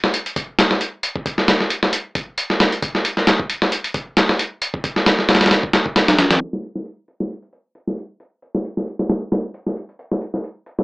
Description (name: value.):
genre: breakbeat.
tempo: 134 BPM.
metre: 4/4.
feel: swing 55% on 16ths.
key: none.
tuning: none.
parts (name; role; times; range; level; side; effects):
dusty soul sampler-style drum kit; drums; 0.0-10.8 s; hi-hat, kick drum, snare drum; -16 LUFS; equal; overdrive.
room: light reverb.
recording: low-pass filter, AM radio sound.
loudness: -17 LUFS.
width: side -26 dB against mid.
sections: 0.0-6.4 A section; 6.4-10.8 B section.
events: filter sweep 6.4-10.8.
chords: none.